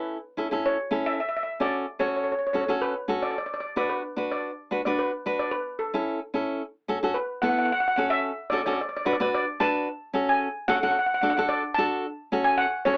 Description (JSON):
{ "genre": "calypso", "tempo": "110 BPM", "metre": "4/4", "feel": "swing 54% on 16ths", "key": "unclear", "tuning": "A4 = 440 Hz", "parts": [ { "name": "steel pan", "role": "melody", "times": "0.0-13.0 s", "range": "A4 to A5", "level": "-28 LUFS", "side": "equal", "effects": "none" }, { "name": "nylon-string guitar", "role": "accompaniment", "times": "0.0-13.0 s", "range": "B3 to B4", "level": "-29 LUFS", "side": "equal", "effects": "none" } ], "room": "moderate booth ambience, RT60 0.2 s", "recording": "AM radio sound", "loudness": "-27 LUFS", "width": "mono", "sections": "0.0-7.7 A section; 7.7-13.0 B section", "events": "none", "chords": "0.0 Aadd9; 1.2 F#m; 3.4 Bm; 5.5 A; 6.6 F#m; 7.2 Esus4; 7.7 F#m; 8.8 Bm; 9.9 F#m/C#; 11.0 D; 12.0 F#m" }